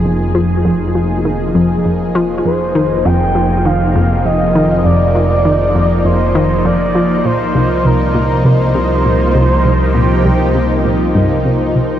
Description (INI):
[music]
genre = ambient, sequencer-driven space music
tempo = 100 BPM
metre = 4/4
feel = straight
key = F dorian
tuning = A4 = 440 Hz
[part]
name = lush unison pad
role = sustained chords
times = 0.0-12.0 s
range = F3 to Ab4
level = -16 LUFS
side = equal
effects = chorus, phaser
[part]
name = fat analog bass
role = bass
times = 0.0-12.0 s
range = F1 to C2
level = -17 LUFS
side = equal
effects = none
[part]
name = analog pluck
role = riff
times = 0.1-11.9 s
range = C2 to F3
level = -16 LUFS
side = equal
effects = chorus, analog delay
[part]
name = expressive synth lead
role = melody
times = 2.5-11.5 s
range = Bb4 to G5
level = -17 LUFS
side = equal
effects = wide subtle chorus, analog delay
[sound]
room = wet huge ambient reverb, RT60 7.8 s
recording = dark, warm production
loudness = -11 LUFS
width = side -11 dB against mid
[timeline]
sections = 0.0-12.0 A section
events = none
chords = 0.0 Fm; 7.3 Cm